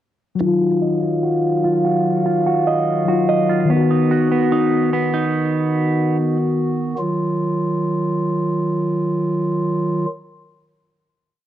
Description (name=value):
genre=hip hop, drill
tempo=146 BPM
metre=4/4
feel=half-time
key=Eb minor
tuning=A4 = 439 Hz
part: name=muted felt-like synth keys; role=accompaniment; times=0.4-7.0 s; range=D#3 to F#4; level=-20 LUFS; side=left 5 dB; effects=chorus, low-pass filter, cassette tape
part: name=pipe organ, stopped flute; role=sustained chords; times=0.4-10.1 s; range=Eb3 to F5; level=-20 LUFS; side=right 1 dB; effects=low-pass filter, cassette tape
part: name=clean electric guitar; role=arpeggios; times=0.4-6.4 s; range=B3 to Eb5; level=-20 LUFS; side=right 6 dB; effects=low-pass filter, cassette tape, analog delay
room=light reverb, small room ambience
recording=home recording on cassette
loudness=-16 LUFS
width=side -12 dB against mid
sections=0.4-7.0 breakdown; 7.0-10.3 final chord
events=filter sweep 0.4-7.0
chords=0.4 Ebmadd9; 3.7 B/D#; 7.0 Ebmadd9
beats=| 0.41 0.82 1.23 1.64 | 2.05 2.46 2.88 3.29 | 3.70 4.11 4.52 4.93 | 5.34 5.75 6.16 6.58 | 6.99 7.40 7.81 8.22 | 8.63 9.04 9.45 9.86